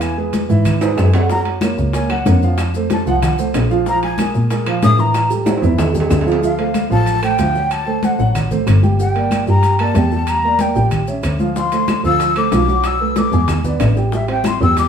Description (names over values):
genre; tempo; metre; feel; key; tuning
Afro-Cuban jazz; 187 BPM; 4/4; straight; D minor from 6.4 s; A4 = 440 Hz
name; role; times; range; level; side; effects
breathy mellow jazz flute; melody; 0.0-14.9 s; E5 to E6; -19 LUFS; left 3 dB; none
warm concert grand piano; accompaniment; 0.0-14.9 s; E3 to G#5; -20 LUFS; right 4 dB; none
bright double bass; bass; 0.0-14.9 s; G1 to Bb2; -17 LUFS; equal; none
claves; percussion; 0.0-14.6 s; none; -34 LUFS; left 4 dB; none
congas; percussion; 0.0-14.9 s; none; -23 LUFS; left 1 dB; none
maracas; percussion; 0.0-14.9 s; none; -38 LUFS; left 3 dB; none
timbales; percussion; 0.0-14.9 s; none; -26 LUFS; right 3 dB; none
bongos; percussion; 1.3-6.4, 11.6-14.9 s; none; -26 LUFS; left 3 dB; none
room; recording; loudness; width
wet studio reverb, RT60 0.9 s; heard from further back in the room; -13 LUFS; side -8 dB against mid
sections
0.0-6.4 A section; 6.4-14.9 A section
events
flute solo 0.0-14.9; drum fill 0.8-1.3, 5.5-6.4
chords
0.0 Eadd9; 1.3 Gb; 2.6 F; 3.9 Bb5; 5.1 A5; 6.4 Dm7; 7.7 D7; 9.0 Gmadd9; 10.3 Em7b5; 10.9 A7; 11.6 Dm9; 12.8 Bm7; 13.5 E7; 14.1 Am7